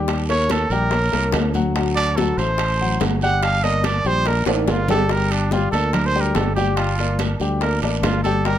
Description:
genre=Afro-Cuban jazz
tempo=143 BPM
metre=4/4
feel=straight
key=G minor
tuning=A4 = 440 Hz
part: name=warm grand piano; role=accompaniment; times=0.0-8.6 s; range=F#3 to G5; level=-24 LUFS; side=left 4 dB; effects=none
part: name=fingered electric bass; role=bass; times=0.0-8.6 s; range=G1 to Eb2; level=-22 LUFS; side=right 1 dB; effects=none
part: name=bongos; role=percussion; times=0.1-8.6 s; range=none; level=-28 LUFS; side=left 7 dB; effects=none
part: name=congas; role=percussion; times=0.1-8.6 s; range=none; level=-28 LUFS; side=left 3 dB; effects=none
part: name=guiro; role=percussion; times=0.1-8.6 s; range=none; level=-34 LUFS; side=right 7 dB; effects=none
part: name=timbales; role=percussion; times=0.1-8.6 s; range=none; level=-28 LUFS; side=right 7 dB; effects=none
part: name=clear trumpet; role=melody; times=0.3-8.6 s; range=D4 to F#5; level=-22 LUFS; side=right 3 dB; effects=none
room=little or no reverb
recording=close, detailed microphones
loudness=-17 LUFS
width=side -11 dB against mid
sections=0.0-5.1 A section; 5.1-8.6 A section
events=trumpet solo 0.0-8.6; drum fill 4.5-5.1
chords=0.0 Eb7; 1.8 D7; 3.4 Gm

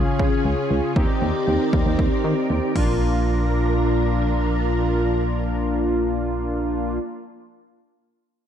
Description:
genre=synth-pop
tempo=117 BPM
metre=4/4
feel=straight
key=Bb major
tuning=A4 = 440 Hz
part: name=analog synth brass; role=accompaniment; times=0.0-7.0 s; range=Bb3 to Ab4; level=-23 LUFS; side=left 1 dB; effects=chorus
part: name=ensemble organ-string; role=sustained chords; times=0.0-7.0 s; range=Bb2 to D5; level=-25 LUFS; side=right 1 dB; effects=ensemble chorus
part: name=solid FM bass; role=bass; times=0.0-7.0 s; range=Bb1 to Eb3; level=-24 LUFS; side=equal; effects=none
part: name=80s electronic pad drums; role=drums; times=0.2-2.9 s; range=crash cymbal, kick drum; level=-22 LUFS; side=equal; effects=none
room=moderate scoring stage reverb, RT60 1.6 s, digital ambience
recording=dark, warm production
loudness=-19 LUFS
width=side -9 dB against mid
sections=0.0-3.0 A section; 3.0-7.1 B section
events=none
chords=0.0 Db; 1.0 Cm7/Eb; 2.8 Bb

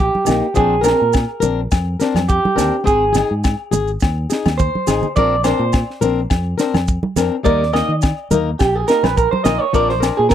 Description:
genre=highlife guitar band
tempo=105 BPM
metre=4/4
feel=swing 54% on 16ths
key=Bb mixolydian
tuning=A4 = 440 Hz
part: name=electric guitar through a small old amp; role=arpeggios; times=0.0-10.3 s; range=G4 to Eb5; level=-17 LUFS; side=right 4 dB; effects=spring reverb, slapback echo
part: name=fingered electric bass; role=bass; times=0.0-10.3 s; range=Ab1 to Eb3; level=-21 LUFS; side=equal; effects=none
part: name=tight funk drum kit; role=drums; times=0.0-10.3 s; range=kick drum, snare drum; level=-19 LUFS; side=equal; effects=none
part: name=congas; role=percussion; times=0.1-9.6 s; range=none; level=-21 LUFS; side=right 3 dB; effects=none
part: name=fingerpicked plugged-in swing-style acoustic guitar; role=accompaniment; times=0.3-10.2 s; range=F3 to Bb4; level=-19 LUFS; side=left 7 dB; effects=none
part: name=agogo bells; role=percussion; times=0.3-10.3 s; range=none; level=-27 LUFS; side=left 17 dB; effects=none
part: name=maracas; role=percussion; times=0.3-10.3 s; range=none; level=-30 LUFS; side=right 10 dB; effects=none
room=light reverb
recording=dry, close 1970s-style studio recording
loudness=-14 LUFS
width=side -10 dB against mid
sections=0.0-10.3 A section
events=clean electric guitar solo 0.0-10.3; drum fill 4.7-5.2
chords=0.0 Eb; 0.6 Bbadd9; 2.9 Ab; 5.2 Bbadd9; 7.5 Eb; 9.7 Bbadd9

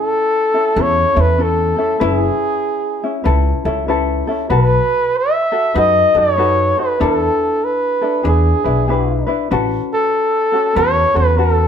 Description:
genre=Hawaiian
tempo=96 BPM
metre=4/4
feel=swing 64% on 8ths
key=A major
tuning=A4 = 440 Hz
part: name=breathy flugelhorn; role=melody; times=0.0-11.7 s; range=G#4 to E5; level=-15 LUFS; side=equal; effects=none
part: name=ukulele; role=accompaniment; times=0.0-11.7 s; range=C#4 to B4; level=-20 LUFS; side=left 4 dB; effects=none
part: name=upright bass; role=bass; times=0.8-11.7 s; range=F#1 to F#2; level=-17 LUFS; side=equal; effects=none
room=moderate studio reverb, RT60 0.9 s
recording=band playing live in one room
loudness=-13 LUFS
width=side -8 dB against mid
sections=0.0-11.7 A section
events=none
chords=0.0 Amaj7; 2.0 F#m11 (rootless); 4.5 B7; 7.0 E7sus4; 8.3 E7; 9.5 A69

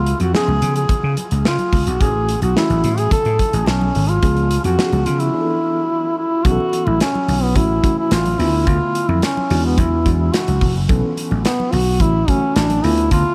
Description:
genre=early-eighties boogie funk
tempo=108 BPM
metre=4/4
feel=straight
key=A major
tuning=A4 = 440 Hz
part: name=mellow duduk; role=melody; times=0.0-13.3 s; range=B3 to A4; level=-22 LUFS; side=equal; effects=delay
part: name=FM electric piano with tremolo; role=accompaniment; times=0.0-13.3 s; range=D3 to A4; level=-27 LUFS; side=equal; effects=none
part: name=vintage slap bass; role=bass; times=0.0-13.2 s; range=E1 to C#3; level=-21 LUFS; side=equal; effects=none
part: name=modern studio drum kit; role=drums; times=0.1-13.2 s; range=hi-hat, kick drum, snare drum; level=-23 LUFS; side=equal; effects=none
part: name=congas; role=percussion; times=0.1-13.2 s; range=none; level=-30 LUFS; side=equal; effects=none
room=light reverb, small room ambience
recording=vinyl crackle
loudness=-17 LUFS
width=mono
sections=0.0-6.4 A section; 6.4-13.3 B section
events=break 5.3-6.4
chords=0.0 C#7; 2.0 A6; 4.2 C#7; 5.3 E7sus4; 6.4 B9sus4; 7.6 A6; 8.4 Dm6; 9.5 E9; 10.9 B9sus4; 12.0 A6; 12.8 Dm6

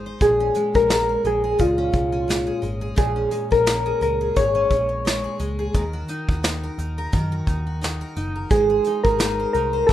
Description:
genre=indie pop, bedroom pop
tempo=87 BPM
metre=4/4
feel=swing 55% on 16ths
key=Bb minor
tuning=A4 = 440 Hz
part: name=picked steel-string acoustic guitar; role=accompaniment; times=0.0-9.9 s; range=Bb2 to C5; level=-28 LUFS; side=left 1 dB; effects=wide subtle chorus, vibrato effect
part: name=vintage muted picked electric bass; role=bass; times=0.0-9.9 s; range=F1 to Gb2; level=-28 LUFS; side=equal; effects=none
part: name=soft electric-piano-like synth keys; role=melody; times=0.2-9.9 s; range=F4 to Db5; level=-19 LUFS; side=equal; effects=lush chorus
part: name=soft brush drum kit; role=drums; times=0.2-9.9 s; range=hi-hat, kick drum, snare drum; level=-22 LUFS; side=equal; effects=none
room=light reverb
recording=rough home demo mix, lossy compression artefacts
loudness=-19 LUFS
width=side -12 dB against mid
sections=0.0-9.9 A section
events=none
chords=0.2 Bbm7; 5.7 Ebm; 8.5 Ab

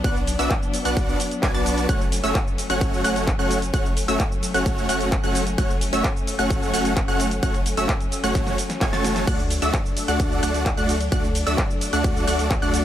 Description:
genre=EDM, festival progressive house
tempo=130 BPM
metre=4/4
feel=straight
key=F# minor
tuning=A4 = 436 Hz
part: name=rich studio string section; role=sustained chords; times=0.0-12.8 s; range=F#3 to D4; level=-30 LUFS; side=left 3 dB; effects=sidechain pumping
part: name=wide unison pluck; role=arpeggios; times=0.0-12.8 s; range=E6 to A6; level=-30 LUFS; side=right 1 dB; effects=cassette tape, sidechain pumping, dub echo
part: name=big supersaw lead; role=riff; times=0.0-12.8 s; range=A3 to A5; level=-24 LUFS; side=equal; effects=sidechain pumping, dub echo
part: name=saturated sub bass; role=bass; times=0.0-12.8 s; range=F#1 to D2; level=-28 LUFS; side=equal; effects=sidechain pumping
part: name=electronic kick drum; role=drums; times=0.0-12.6 s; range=none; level=-24 LUFS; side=equal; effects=none
part: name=house drum kit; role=drums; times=0.0-12.8 s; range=crash cymbal, handclaps, hi-hat, ride cymbal, shaker, snare drum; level=-29 LUFS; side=equal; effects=none
room=little or no reverb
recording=none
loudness=-19 LUFS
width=side -11 dB against mid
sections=0.0-12.8 A section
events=drum fill 8.4-9.3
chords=0.0 Bm; 1.9 F#m; 9.3 D

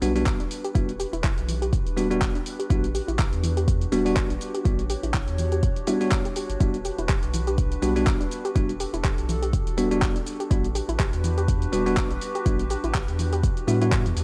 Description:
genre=deep house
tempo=123 BPM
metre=4/4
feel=swing 56% on 16ths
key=E dorian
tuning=A4 = 440 Hz
part: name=warbly tape-like pad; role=sustained chords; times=0.0-14.2 s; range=D4 to C#5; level=-36 LUFS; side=equal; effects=chorus, built-in reverb, sidechain pumping
part: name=soft round pluck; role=arpeggios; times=0.0-14.1 s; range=E3 to G4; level=-35 LUFS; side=equal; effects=chorus, cassette tape, sidechain pumping, analog delay
part: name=bell-like tine electric piano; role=stabs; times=0.0-14.0 s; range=G3 to F#4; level=-29 LUFS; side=equal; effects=vintage 12-bit sampler grit, sidechain pumping, analog delay
part: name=round analog bass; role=bass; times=0.0-14.2 s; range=E1 to A2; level=-30 LUFS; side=equal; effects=sidechain pumping
part: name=deep house drum kit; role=drums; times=0.0-14.2 s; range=handclaps, hi-hat, shaker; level=-35 LUFS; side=equal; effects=vintage 12-bit sampler grit
part: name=electronic kick drum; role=drums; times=0.3-14.0 s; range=none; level=-27 LUFS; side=equal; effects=vintage 12-bit sampler grit
room=little or no reverb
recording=none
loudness=-24 LUFS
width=mono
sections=0.0-14.2 A section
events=none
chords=0.0 Em9; 2.7 A13sus4; 6.6 Em9

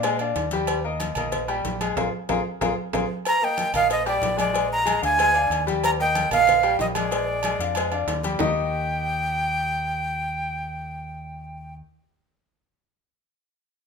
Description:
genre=latin, salsa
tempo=186 BPM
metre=4/4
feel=straight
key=Eb major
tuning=A4 = 440 Hz
part: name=bright grand piano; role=accompaniment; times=0.0-11.8 s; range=Eb3 to Ab5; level=-27 LUFS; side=left 5 dB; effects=none
part: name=deep dub fingered electric bass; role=bass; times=0.0-11.8 s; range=Bb1 to Bb2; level=-32 LUFS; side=right 1 dB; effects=none
part: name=agogo bells and timbales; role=percussion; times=0.0-8.5 s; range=none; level=-31 LUFS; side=right 3 dB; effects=none
part: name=congas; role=percussion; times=0.0-8.5 s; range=none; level=-34 LUFS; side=left 2 dB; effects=none
part: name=cowbell and bongos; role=percussion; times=0.0-8.5 s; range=none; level=-31 LUFS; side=left 3 dB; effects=none
part: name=breathy bright jazz flute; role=melody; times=3.3-11.7 s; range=D5 to Bb5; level=-22 LUFS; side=right 2 dB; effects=none
room=moderate large studio reverb, RT60 0.8 s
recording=minimal, uncompressed stereo recording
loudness=-21 LUFS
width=side -5 dB against mid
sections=0.0-3.3 A section; 3.3-8.4 B section; 8.4-11.0 C section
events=drum fill 2.0-3.3; band accent 2.0-3.3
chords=0.0 Bb7; 0.7 Eb; 2.0 Bb5; 3.3 Eb; 4.5 Bb7; 5.8 Eb; 7.1 Bb7; 8.4 Eb

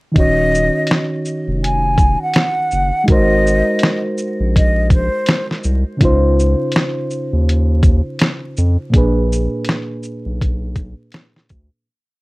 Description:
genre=lo-fi hip hop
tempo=82 BPM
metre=4/4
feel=swing 59% on 16ths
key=Eb dorian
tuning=A4 = 439 Hz
part: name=mellow reed electric piano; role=accompaniment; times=0.1-11.9 s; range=Bb2 to Db5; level=-20 LUFS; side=right 1 dB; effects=cassette tape, plate reverb
part: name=breathy hollow jazz flute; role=melody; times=0.2-5.5 s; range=C5 to Ab5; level=-18 LUFS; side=equal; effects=none
part: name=saturated sub bass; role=bass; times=0.2-11.7 s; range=Eb1 to F2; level=-16 LUFS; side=equal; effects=none
part: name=lo-fi sampler-style drum kit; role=drums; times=0.2-11.7 s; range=hi-hat, kick drum, shaker, snare drum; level=-15 LUFS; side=equal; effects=vintage 12-bit sampler grit
room=light reverb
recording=vinyl crackle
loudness=-13 LUFS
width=side -23 dB against mid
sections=0.2-11.9 A section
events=fade-out 8.9-11.9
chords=0.2 Ebm9; 3.1 Ab9; 6.0 Dbmaj9; 8.9 Bb7b9

